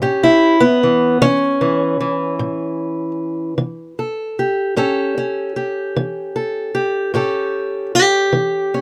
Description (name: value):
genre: acoustic country blues, solo or duo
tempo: 50 BPM (dotted quarters)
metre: 12/8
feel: straight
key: unclear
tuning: A4 = 439 Hz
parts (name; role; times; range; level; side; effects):
- fingerpicked acoustic archtop guitar; solo; 0.0-8.8 s; A2 to A4; -18 LUFS; equal; none
room: moderate booth ambience, RT60 0.2 s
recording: close, detailed microphones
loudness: -18 LUFS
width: mono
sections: 0.0-8.8 A section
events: steel-string acoustic guitar solo 0.0-8.8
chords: 0.0 A7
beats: | 0.03 1.22 2.40 3.59 | 4.78 5.97 7.15 8.34